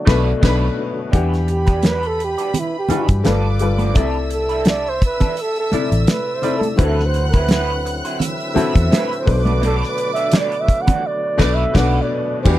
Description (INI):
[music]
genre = lush 1970s-style soul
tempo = 85 BPM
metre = 4/4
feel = swing 54% on 16ths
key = unclear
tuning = A4 = 440 Hz
[part]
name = breathy flugelhorn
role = melody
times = 0.0-12.6 s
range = E4 to F#5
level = -22 LUFS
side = right 3 dB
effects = none
[part]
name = dark baby grand piano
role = accompaniment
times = 0.0-12.6 s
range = B2 to F#5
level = -23 LUFS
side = left 5 dB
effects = none
[part]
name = tonewheel organ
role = sustained chords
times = 0.0-1.1, 6.8-12.6 s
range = B2 to F#5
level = -29 LUFS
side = left 1 dB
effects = fast rotary speaker, overdrive
[part]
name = dark studio violin section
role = second line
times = 0.1-12.6 s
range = B4 to F#6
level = -29 LUFS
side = equal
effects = none
[part]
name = electric guitar through a small old amp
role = riff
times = 0.1-12.6 s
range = F3 to D5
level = -27 LUFS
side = right 5 dB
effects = wah, wide subtle chorus
[part]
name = vintage muted fingered electric bass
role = bass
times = 0.1-12.6 s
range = G1 to G2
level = -19 LUFS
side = equal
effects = none
[part]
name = damped 70s drum kit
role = drums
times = 0.1-12.6 s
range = crash cymbal, hi-hat, kick drum, snare drum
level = -16 LUFS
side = equal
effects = none
[part]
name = congas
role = percussion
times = 1.1-12.6 s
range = none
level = -24 LUFS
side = right 3 dB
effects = none
[sound]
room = little or no reverb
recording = dry, close 1970s-style studio recording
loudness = -15 LUFS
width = side -14 dB against mid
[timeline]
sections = 0.0-1.1 A section; 1.1-12.5 B section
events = band accent 0.0-1.1, 11.0-12.5; flugelhorn solo 1.1-12.5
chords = 0.0 Bm7; 1.1 Em9; 3.3 G9; 4.0 C69; 6.8 D13; 9.3 Bm7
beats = 0.43 | 1.14 1.84 2.55 3.26 | 3.97 4.67 5.38 6.09 | 6.80 7.51 8.21 8.92 | 9.63 10.34 11.04 11.75 | 12.46